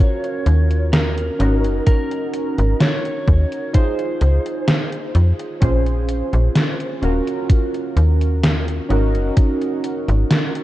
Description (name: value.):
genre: vaporwave.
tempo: 64 BPM.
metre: 4/4.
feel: straight.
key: unclear.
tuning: A4 = 439 Hz.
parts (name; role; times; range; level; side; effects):
lightly driven lead guitar; melody; 0.0-5.1 s; Bb4 to Db5; -28 LUFS; right 1 dB; vintage 12-bit sampler grit, tape echo.
warbly lo-fi synth keys; accompaniment; 0.0-10.6 s; Db4 to C5; -23 LUFS; right 1 dB; wide subtle chorus, analog delay.
gated 80s digital drum machine; drums; 0.2-10.6 s; hi-hat, snare drum; -20 LUFS; equal; gated reverb, gated reverb snare, overdrive, vintage 12-bit sampler grit.
slap-like FM bass; bass; 0.5-10.2 s; Eb1 to F2; -16 LUFS; equal; none.
electronic kick drum; drums; 1.9-9.6 s; none; -14 LUFS; equal; vintage 12-bit sampler grit.
room: little or no reverb.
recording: dark, warm production, cassette tape.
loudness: -16 LUFS.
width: side -15 dB against mid.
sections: 0.0-10.6 A section.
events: none.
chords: 0.0 Ebm9; 1.4 Ab9sus4; 3.7 Dbmaj9 (rootless); 5.6 Bbm9; 7.0 Ebm9; 8.9 Ab9sus4.